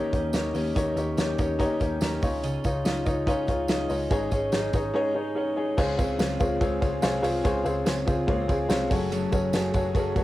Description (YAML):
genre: jangly indie pop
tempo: 144 BPM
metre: 4/4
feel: straight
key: Db major from 5.8 s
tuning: A4 = 440 Hz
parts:
  - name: electric guitar through a small old amp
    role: accompaniment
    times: 0.0-10.2 s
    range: Gb2 to Eb5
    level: -35 LUFS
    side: right 6 dB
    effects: cassette tape
  - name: warm upright piano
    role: accompaniment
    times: 0.0-10.2 s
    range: Eb4 to Db6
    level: -27 LUFS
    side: left 2 dB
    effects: cassette tape
  - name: mellow electric guitar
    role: arpeggios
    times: 0.0-10.2 s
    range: Ab2 to Ab4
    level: -32 LUFS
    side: left 2 dB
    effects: cassette tape, tape echo
  - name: vintage muted picked electric bass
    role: bass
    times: 0.1-10.2 s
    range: Gb1 to Eb2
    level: -33 LUFS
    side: equal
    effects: none
  - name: loose indie drum kit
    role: drums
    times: 0.1-10.2 s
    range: crash cymbal, hi-hat, kick drum, ride cymbal, snare drum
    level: -28 LUFS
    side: equal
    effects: cassette tape
  - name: tambourine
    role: percussion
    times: 0.3-10.2 s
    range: none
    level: -46 LUFS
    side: right 6 dB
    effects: none
room: light reverb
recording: home recording on cassette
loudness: -23 LUFS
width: side -15 dB against mid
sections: 0.0-5.8 A section; 5.8-10.2 B section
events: upright piano fill 1.2-2.4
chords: 0.0 Eb7; 2.2 Dbadd9; 4.1 Absus4; 5.8 Dbmaj7; 8.9 Gbmadd9